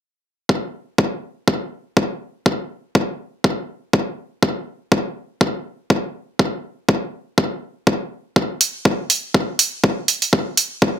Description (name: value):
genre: house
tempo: 122 BPM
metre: 4/4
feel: swing 56% on 16ths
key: none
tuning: none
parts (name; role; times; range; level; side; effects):
- electronic kick drum; drums; 0.5-10.9 s; none; -17 LUFS; equal; high-pass filter on kick, high-pass filter on room
- electronic hi-hat; drums; 8.6-10.7 s; none; -16 LUFS; right 4 dB; none
room: little or no reverb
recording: none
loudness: -18 LUFS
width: side -10 dB against mid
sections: 0.5-11.0 A section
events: none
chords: none